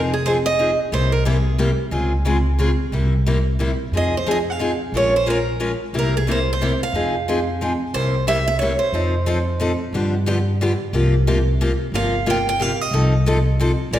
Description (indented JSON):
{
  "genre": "acoustic string swing (jazz manouche)",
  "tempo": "180 BPM",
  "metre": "3/4",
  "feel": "swing 59% on 8ths",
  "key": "F minor",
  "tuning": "A4 = 440 Hz",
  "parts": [
    { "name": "picked steel-string acoustic guitar", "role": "accompaniment", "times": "0.0-14.0 s", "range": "C3 to Bb4", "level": "-22 LUFS", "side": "left 1 dB", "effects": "none" },
    { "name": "upright bass", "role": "bass", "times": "0.0-14.0 s", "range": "F1 to G2", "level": "-21 LUFS", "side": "equal", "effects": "none" },
    { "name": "picked steel-string acoustic guitar", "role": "melody", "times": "0.1-1.6, 4.0-9.8, 12.0-14.0 s", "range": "Ab4 to G5", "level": "-22 LUFS", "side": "right 2 dB", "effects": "none" }
  ],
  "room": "wet concert hall reverb, RT60 1.9 s",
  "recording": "recorded in a church or concert hall",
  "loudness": "-17 LUFS",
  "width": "side -12 dB against mid",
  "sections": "0.0-7.9 A section; 7.9-14.0 B section",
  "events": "none",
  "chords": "0.0 Fm7; 0.9 C7b13; 1.9 Dbmaj7; 2.9 C7; 3.9 Fm7; 4.9 Bbm7; 5.9 C7; 6.9 Fm7; 7.9 C7; 8.9 F7; 9.9 G7; 10.9 C7sus4; 12.9 F7/C"
}